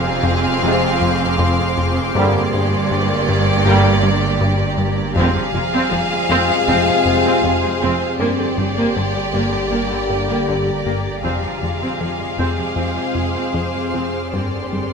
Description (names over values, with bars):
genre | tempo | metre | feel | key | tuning
cinematic, suspense film score | 79 BPM | 4/4 | straight | F dorian | A4 = 439 Hz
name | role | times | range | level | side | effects
rich studio violin section | melody | 0.0-14.9 s | D5 to F5 | -24 LUFS | left 3 dB | none
rich studio violin section | second line | 0.0-14.9 s | G4 to Ab4 | -25 LUFS | right 2 dB | none
rich studio viola section | accompaniment | 0.0-14.8 s | D3 to C4 | -24 LUFS | right 2 dB | none
shimmering ambient pad | sustained chords | 0.0-14.9 s | G4 to C6 | -29 LUFS | left 1 dB | chorus, built-in reverb
plucky analog bass | riff | 0.0-14.9 s | F2 to G2 | -23 LUFS | left 2 dB | none
rich studio cello section | bass | 0.0-14.8 s | F2 to G2 | -24 LUFS | right 4 dB | none
rich studio double bass section | bass | 0.0-14.8 s | F1 to G1 | -27 LUFS | right 4 dB | none
organ-like drone | drone | 0.1-14.9 s | G1 to F2 | -27 LUFS | equal | ensemble chorus, built-in reverb
warm studio violin section | texture | 0.0-4.7, 11.2-14.9 s | C6 to F6 | -29 LUFS | left 1 dB | none
clear trombone section | sustained chords | 0.6-14.9 s | C3 to Ab3 | -27 LUFS | right 4 dB | none
warm French horn section | sustained chords | 0.6-14.9 s | Bb3 to G4 | -25 LUFS | left 8 dB | none
room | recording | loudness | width
moderate scoring stage reverb, RT60 1.8 s | close, detailed microphones | -15 LUFS | side -5 dB against mid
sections
0.0-14.9 A section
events
none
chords
0.0 Fm; 2.1 Gm; 5.2 Fm; 8.2 Gm; 11.2 Fm; 14.3 Gm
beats
0.63 1.39 | 2.14 2.90 3.65 4.40 | 5.16 5.91 6.67 7.43 | 8.19 8.94 9.70 10.46 | 11.22 11.98 12.75 13.53 | 14.33